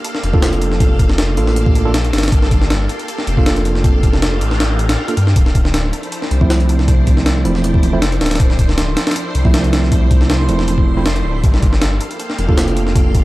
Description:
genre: drum and bass, jungle.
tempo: 158 BPM.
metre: 4/4.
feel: swing 53% on 16ths.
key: unclear.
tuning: A4 = 439 Hz.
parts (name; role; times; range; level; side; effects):
soft string machine; sustained chords; 0.0-13.2 s; F3 to F5; -26 LUFS; equal; ensemble chorus.
breakbeat sampler-style drum kit; drums; 0.0-13.2 s; hi-hat, kick drum, snare drum; -15 LUFS; equal; none.
detuned saw bass; bass; 0.2-13.2 s; D1 to G2; -16 LUFS; equal; none.
tine electric piano; stabs; 0.3-13.2 s; F3 to A4; -21 LUFS; right 3 dB; dub echo.
noise sweep; sound effects; 4.3-5.4 s; none; -29 LUFS; equal; none.
backwards swelling texture; texture; 6.8-13.2 s; C6; -34 LUFS; right 5 dB; none.
room: digital ambience.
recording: dry, gritty hardware recording, transformer saturation.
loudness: -12 LUFS.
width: side -18 dB against mid.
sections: 0.0-13.2 A section.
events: noise sweep 4.3-5.4.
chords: 0.0 Gm9; 5.4 Dm9; 11.4 Gm9.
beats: 0.04 0.42 | 0.80 1.18 1.56 1.94 | 2.32 2.70 3.08 3.46 | 3.84 4.22 4.60 4.98 | 5.36 5.74 6.12 6.50 | 6.88 7.26 7.64 8.02 | 8.40 8.78 9.16 9.54 | 9.92 10.30 10.68 11.06 | 11.44 11.82 12.20 12.58 | 12.96.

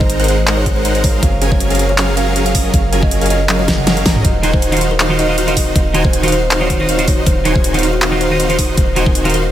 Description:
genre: future bass.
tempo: 159 BPM.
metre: 4/4.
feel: half-time.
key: Eb dorian.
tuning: A4 = 438 Hz.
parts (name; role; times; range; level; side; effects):
buzzing kalimba; melody; 0.0-9.5 s; Gb4 to Bb5; -21 LUFS; right 1 dB; sidechain pumping.
ethereal airy pad; sustained chords; 0.0-9.5 s; Eb3 to Bb4; -28 LUFS; equal; none.
supersaw chords; riff; 0.0-9.4 s; Eb3 to Bb5; -18 LUFS; equal; sidechain pumping.
warm 808-style bass; bass; 0.0-9.5 s; Eb1 to Ab1; -19 LUFS; equal; sidechain pumping.
electronic kick drum; drums; 0.0-9.1 s; none; -15 LUFS; equal; overdrive.
dubstep drum kit; drums; 0.1-9.4 s; handclaps, hi-hat, snare drum, toms; -18 LUFS; equal; overdrive.
clean electric guitar; accompaniment; 4.4-9.4 s; Eb3 to Eb5; -21 LUFS; right 1 dB; sidechain pumping, digital delay.
room: digital ambience.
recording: none.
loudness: -11 LUFS.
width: side -12 dB against mid.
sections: 0.0-9.5 A section.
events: drum fill 3.5-4.2.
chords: 0.0 Ab9; 1.2 Gbmaj9; 4.2 Ebm69.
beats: 0.10 0.47 0.85 | 1.23 1.60 1.98 2.36 | 2.74 3.11 3.49 3.87 | 4.25 4.62 5.00 5.38 | 5.76 6.13 6.51 6.89 | 7.26 7.64 8.02 8.40 | 8.78 9.15.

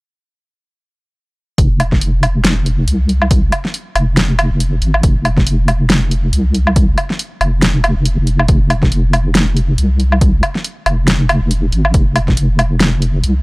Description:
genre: deep dubstep.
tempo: 139 BPM.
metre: 4/4.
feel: swing 57% on 16ths, half-time.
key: F minor.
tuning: A4 = 440 Hz.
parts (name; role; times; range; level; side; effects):
deep soft wobble bass; bass; 1.6-13.4 s; F1 to C2; -13 LUFS; equal; chorus.
deep house drum kit; drums; 1.6-13.3 s; hi-hat, snare drum, woodblock; -16 LUFS; equal; overdrive.
electronic kick drum; drums; 1.6-12.4 s; none; -14 LUFS; equal; overdrive.
room: digital ambience.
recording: dry, gritty hardware recording.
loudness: -11 LUFS.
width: side -26 dB against mid.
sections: 1.6-13.4 A section.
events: none.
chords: none.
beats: | 1.58 2.01 2.44 2.88 | 3.31 3.74 4.17 4.60 | 5.04 5.47 5.90 6.33 | 6.76 7.19 7.62 8.06 | 8.49 8.92 9.35 9.78 | 10.21 10.65 11.08 11.51 | 11.94 12.37 12.80 13.24.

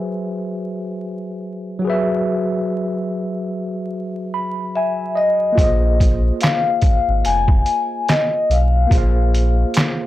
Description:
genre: lo-fi hip hop.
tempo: 72 BPM.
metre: 4/4.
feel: swing 59% on 16ths.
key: unclear.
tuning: A4 = 440 Hz.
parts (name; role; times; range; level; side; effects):
bright tine electric piano; accompaniment; 0.0-10.1 s; Gb3 to Cb6; -23 LUFS; equal; medium stereo tremolo, cassette tape, low-pass filter.
vibraphone with soft mallets; melody; 4.8-9.7 s; Eb5 to Ab5; -19 LUFS; left 3 dB; low-pass filter.
sub bass with octave; bass; 5.6-9.6 s; F1 to Cb2; -17 LUFS; equal; tube saturation.
trip hop sampler-style drum kit; drums; 5.6-10.0 s; handclaps, hi-hat, kick drum, snare drum; -16 LUFS; equal; vintage 12-bit sampler grit.
room: little or no reverb.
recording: dry, gritty hardware recording, transformer saturation, vinyl crackle.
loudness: -16 LUFS.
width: side -14 dB against mid.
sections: 0.0-5.6 A section; 5.6-10.1 B section.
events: none.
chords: 0.0 Gb9sus4; 5.6 Bb9sus4.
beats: 0.58 1.41 | 2.25 3.08 3.91 4.75 | 5.58 6.41 7.25 8.08 | 8.91 9.74.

